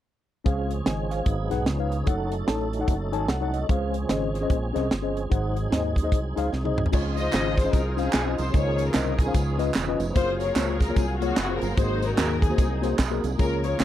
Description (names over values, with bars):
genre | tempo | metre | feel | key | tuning
uptempo gospel | 148 BPM | 4/4 | swing 61% on 8ths | Db major | A4 = 441 Hz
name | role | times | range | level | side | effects
mellow tine electric piano | accompaniment | 0.4-13.8 s | Ab2 to A5 | -28 LUFS | left 3 dB | medium stereo tremolo
tonewheel organ | sustained chords | 0.5-13.8 s | C3 to F5 | -33 LUFS | right 5 dB | slow rotary speaker, chorus vibrato
fingered electric bass | bass | 0.5-13.8 s | Fb1 to Eb2 | -29 LUFS | equal | none
tight funk drum kit | drums | 0.5-13.8 s | crash cymbal, hi-hat, kick drum, snare drum, toms | -24 LUFS | right 1 dB | none
warm studio string section | melody | 6.9-13.8 s | Bb3 to Eb5 | -29 LUFS | left 4 dB | none
tambourine and handclaps | percussion | 6.9-13.8 s | none | -35 LUFS | right 6 dB | none
room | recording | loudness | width
little or no reverb | dry, close 1970s-style studio recording | -22 LUFS | side -12 dB against mid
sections
0.5-6.9 A section; 6.9-13.8 B section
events
tine electric piano fill 2.9-3.7; drum fill 6.5-6.9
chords
0.5 Dbmaj7; 1.3 Abm7; 1.7 Db9; 2.1 Gbm6; 3.7 Dbmaj7; 5.3 Ab7; 6.9 Dbmaj9; 8.5 Bbm11/Db; 9.4 Db9; 10.2 Gbmaj9#11; 11.8 Ab9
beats
| 0.46 0.86 1.27 1.67 | 2.07 2.48 2.88 3.29 | 3.69 4.10 4.50 4.91 | 5.31 5.71 6.12 6.52 | 6.93 7.33 7.74 8.14 | 8.54 8.95 9.35 9.76 | 10.16 10.56 10.97 11.37 | 11.78 12.18 12.58 12.99 | 13.39 13.79